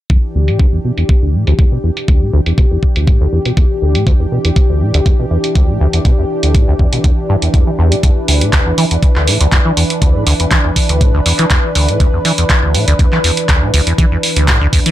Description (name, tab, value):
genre	acid house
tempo	121 BPM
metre	4/4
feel	straight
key	E minor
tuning	A4 = 439 Hz
part	lush unison pad	sustained chords	0.1-14.9 s	E3 to B4	-19 LUFS	equal	chorus, sidechain pumping
part	deep acid bass	riff	0.1-14.9 s	D2 to E3	-14 LUFS	equal	analog chorus, cassette tape, sidechain pumping
part	electronic kick drum	drums	0.1-14.8 s	none	-12 LUFS	equal	none
part	punchy analog drum machine	drums	0.1-14.9 s	handclaps, hi-hat	-17 LUFS	right 1 dB	low-pass filter on hats, low-pass filter on snare, low-pass filter on room
room	little or no reverb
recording	none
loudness	-10 LUFS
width	side -13 dB against mid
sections	0.1-14.9 A section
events	filter sweep on acid bass 0.1-14.9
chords	0.1 Em7